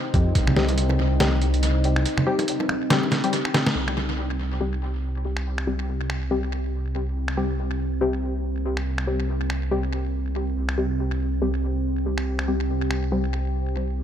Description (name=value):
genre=deep dubstep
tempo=141 BPM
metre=4/4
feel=swing 57% on 16ths, half-time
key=C minor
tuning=A4 = 440 Hz
part: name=deep dark ambient pad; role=sustained chords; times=0.0-14.0 s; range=C4 to Bb4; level=-30 LUFS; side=equal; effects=chorus, built-in reverb
part: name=dark detuned saw bass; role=bass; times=0.1-14.0 s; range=C2 to F2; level=-25 LUFS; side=equal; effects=none
part: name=trip hop sampler-style drum kit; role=drums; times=0.1-13.0 s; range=finger snaps, hi-hat, snare drum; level=-27 LUFS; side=right 1 dB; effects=tape echo
part: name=congas and bongos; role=percussion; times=0.5-3.2 s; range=none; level=-29 LUFS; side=right 3 dB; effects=dub echo
part: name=filtered dub chord stab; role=stabs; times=0.6-13.3 s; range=G3 to G4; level=-28 LUFS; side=left 3 dB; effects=chorus, dub echo
room=light reverb, digital ambience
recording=echo-heavy mix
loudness=-22 LUFS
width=side -9 dB against mid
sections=0.0-3.8 A section; 3.8-14.0 B section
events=filter sweep on synth stab 0.0-3.8, 3.8-14.0; drum fill 3.5; band accent 3.7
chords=0.0 C5